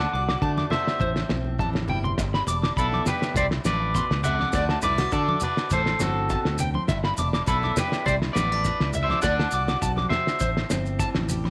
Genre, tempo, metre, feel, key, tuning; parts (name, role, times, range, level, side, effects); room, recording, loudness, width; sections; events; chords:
highlife guitar band; 102 BPM; 4/4; swing 53% on 16ths; G major; A4 = 440 Hz
electric guitar at the edge of break-up; melody; 0.0-11.2 s; E4 to F#5; -29 LUFS; equal
picked acoustic archtop guitar; accompaniment; 0.0-11.5 s; G2 to G4; -37 LUFS; equal
electric guitar at the edge of break-up; arpeggios; 0.0-11.5 s; C5 to D6; -32 LUFS; equal; tape echo
fingered electric bass; bass; 0.0-11.5 s; E1 to D3; -30 LUFS; equal
cloth-damped thuddy drum kit; drums; 0.3-11.5 s; kick drum, snare drum; -31 LUFS; equal
congas; percussion; 0.6-11.5 s; -35 LUFS; equal
maracas; percussion; 2.2-11.4 s; -40 LUFS; equal
light reverb; -24 LUFS; mono
0.0-11.5 A section
drum fill 1.4-2.2
0.0 D; 1.0 Am7; 2.2 G6; 3.4 Cadd9; 4.5 D; 5.7 Am7; 6.9 G6; 8.1 Cadd9; 9.2 D; 10.4 Am7